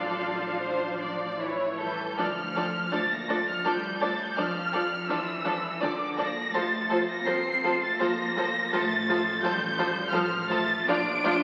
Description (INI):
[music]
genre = classical, slow romantic movement for string orchestra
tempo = 83 BPM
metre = 3/4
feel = uneven beats, rubato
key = D minor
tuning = A4 = 441 Hz
[part]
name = rich studio violin section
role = melody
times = 0.0-11.4 s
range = F5 to D7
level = -32 LUFS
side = equal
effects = none
[part]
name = rich studio violin section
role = second line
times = 0.0-11.3 s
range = F4 to D5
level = -33 LUFS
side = equal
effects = none
[part]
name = rich studio viola section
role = accompaniment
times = 0.0-11.3 s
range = E3 to F4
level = -33 LUFS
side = equal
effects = none
[part]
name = rich studio cello section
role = bass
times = 0.0-11.4 s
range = D3 to D4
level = -38 LUFS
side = equal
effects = none
[part]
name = rich studio double bass section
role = bass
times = 0.0-11.4 s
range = A1 to F2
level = -46 LUFS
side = equal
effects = none
[sound]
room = wet scoring stage reverb, RT60 1.7 s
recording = very old 78 rpm record, vinyl crackle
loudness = -28 LUFS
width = mono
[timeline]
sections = 0.0-2.2 A section; 2.2-11.4 B section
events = none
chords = 0.0 Dm/A; 1.4 A; 2.2 Dm; 4.4 Dm/F; 6.5 F; 8.7 F/A; 10.9 Bb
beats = 0.60 1.39 | 2.17 2.91 3.65 | 4.37 5.08 5.81 | 6.54 7.27 8.00 | 8.73 9.44 10.12 | 10.88